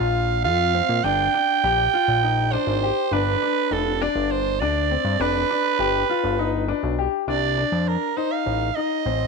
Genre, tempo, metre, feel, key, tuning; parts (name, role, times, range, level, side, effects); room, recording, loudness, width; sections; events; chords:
progressive instrumental, band music in an uneven meter; 202 BPM (eighths); 7/8; straight; C dorian; A4 = 440 Hz
growling soprano saxophone; melody; 0.0-9.3 s; A4 to G5; -22 LUFS; right 11 dB
warm baby grand piano; arpeggios; 0.0-9.3 s; C4 to G4; -25 LUFS; left 15 dB
fat analog bass; bass; 0.0-9.3 s; F1 to Bb2; -25 LUFS; left 1 dB
moderate echo chamber reverb, RT60 2.2 s; 1960s-style stereo with parts hard left and right; -19 LUFS; side -4 dB against mid
0.0-7.3 A section; 7.3-9.3 B section
0.0 Bb6; 3.1 G; 7.3 Cmadd9